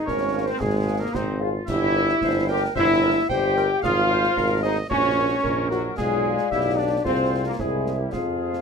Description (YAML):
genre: military-style march for wind band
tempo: 112 BPM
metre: 2/4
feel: straight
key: F minor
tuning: A4 = 440 Hz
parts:
  - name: clear woodwind section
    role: second line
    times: 0.0-8.6 s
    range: Eb4 to C5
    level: -31 LUFS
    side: left 2 dB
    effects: none
  - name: mellow hollow small flute group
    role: second line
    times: 0.0-8.6 s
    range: F4 to G5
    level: -30 LUFS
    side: equal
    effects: none
  - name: warm trombone section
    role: sustained chords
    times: 0.0-8.6 s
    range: F3 to G4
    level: -24 LUFS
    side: left 1 dB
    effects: none
  - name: clear cornet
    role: melody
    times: 0.1-8.6 s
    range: F4 to G5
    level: -30 LUFS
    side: right 2 dB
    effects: none
  - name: warm tuba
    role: bass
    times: 0.1-8.6 s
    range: G1 to F2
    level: -26 LUFS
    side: right 3 dB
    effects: none
  - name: concert snare drum, concert bass drum and clash cymbals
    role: drums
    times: 0.1-8.6 s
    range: none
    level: -35 LUFS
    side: equal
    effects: none
  - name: dark French horn section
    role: accompaniment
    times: 0.3-8.6 s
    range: F4 to F5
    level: -28 LUFS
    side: left 5 dB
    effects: none
room: light reverb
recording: minimal, uncompressed stereo recording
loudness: -20 LUFS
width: side -6 dB against mid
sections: 0.0-8.6 A section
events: none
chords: 0.0 Fm/Ab; 1.7 C7/G; 3.8 Fm/Ab; 4.9 Gb/Bb; 6.0 Bdim7; 7.1 Fm/C; 7.6 C7